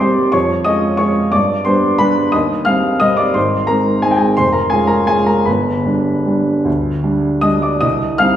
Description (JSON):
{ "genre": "classical, piano waltz", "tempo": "145-189 BPM", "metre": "3/4", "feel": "rubato", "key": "C minor", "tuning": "A4 = 440 Hz", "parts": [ { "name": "warm baby grand piano", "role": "solo", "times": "0.0-8.4 s", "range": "F1 to F6", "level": "-12 LUFS", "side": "equal", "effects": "none" } ], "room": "wet recital hall reverb, RT60 1.4 s", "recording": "heard from further back in the room", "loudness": "-12 LUFS", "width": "side -10 dB against mid", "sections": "0.0-7.8 A section", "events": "none", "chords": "0.3 Db/F; 1.3 G; 2.3 Cm/Eb; 3.4 Ab; 4.4 Db/F; 5.5 G; 7.8 Cm" }